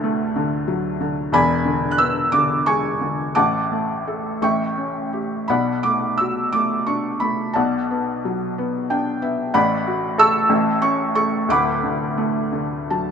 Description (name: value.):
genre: classical, lyrical solo piano.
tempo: 56-62 BPM (dotted quarters).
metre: 6/8.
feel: rubato.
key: D major.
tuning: A4 = 440 Hz.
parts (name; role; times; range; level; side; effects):
felt-muted upright piano; solo; 0.0-13.1 s; D1 to F#6; -18 LUFS; equal; none.
room: light reverb.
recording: none.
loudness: -18 LUFS.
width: side -7 dB against mid.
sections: 0.0-13.1 A section.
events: felt piano fill 8.6-9.5, 12.5-13.1.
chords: 0.0 D; 1.3 E7; 3.4 D/A; 4.4 A7; 5.5 Bm7; 9.5 D/A; 10.5 A; 11.5 D6.